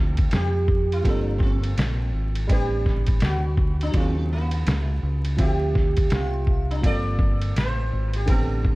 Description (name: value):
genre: hip hop, jazz-hop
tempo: 83 BPM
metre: 4/4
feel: swing 61% on 16ths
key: unclear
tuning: A4 = 444 Hz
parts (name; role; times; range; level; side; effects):
- sitar; melody; 0.0-8.8 s; Bb3 to D5; -29 LUFS; right 2 dB; none
- warm upright piano; accompaniment; 0.0-8.8 s; Db3 to E5; -32 LUFS; right 2 dB; none
- deep dub fingered electric bass; bass; 0.0-8.8 s; G1 to F2; -24 LUFS; equal; none
- trip hop sampler-style drum kit; drums; 0.2-8.8 s; hi-hat, kick drum, ride cymbal, snare drum; -23 LUFS; equal; none
room: digital ambience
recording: dark, warm production, vinyl crackle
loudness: -20 LUFS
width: side -21 dB against mid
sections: 0.0-8.8 A section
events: none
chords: 0.0 Dm11; 1.0 Gm11; 2.5 Am11; 3.9 Ebm11; 5.4 Dm11; 6.8 Gm11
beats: 0.33 1.05 1.77 | 2.49 3.22 3.94 4.66 | 5.38 6.11 6.83 7.55 | 8.28